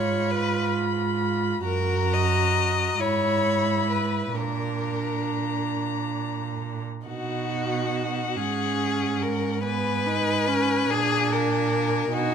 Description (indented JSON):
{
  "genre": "classical, slow romantic movement for string quartet",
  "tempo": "42-50 BPM (dotted quarters)",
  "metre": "6/8",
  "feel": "rubato",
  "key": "unclear",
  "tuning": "A4 = 439 Hz",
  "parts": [
    { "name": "dark violin", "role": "melody", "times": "0.0-12.3 s", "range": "F#5 to Cb6", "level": "-31 LUFS", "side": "left 10 dB", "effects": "none" },
    { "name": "rich violin", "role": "second line", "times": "0.0-12.3 s", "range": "F#4 to Eb5", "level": "-27 LUFS", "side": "left 4 dB", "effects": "none" },
    { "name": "dark viola", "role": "accompaniment", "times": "0.0-12.3 s", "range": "Cb4 to Gb4", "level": "-29 LUFS", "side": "right 3 dB", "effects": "none" },
    { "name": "rich cello", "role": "bass", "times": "0.0-12.3 s", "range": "Gb2 to B2", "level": "-28 LUFS", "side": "right 6 dB", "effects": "none" }
  ],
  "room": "moderate recital hall reverb, RT60 1.7 s",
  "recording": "close, detailed microphones",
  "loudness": "-22 LUFS",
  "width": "side -7 dB against mid",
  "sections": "0.0-12.3 A section",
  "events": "none",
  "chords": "0.0 Fdim/Ab; 1.7 Ebm/Gb; 3.0 E/G#; 4.3 Bb; 7.1 B; 8.4 Ab9sus4; 9.6 Abmadd11; 10.9 Bb"
}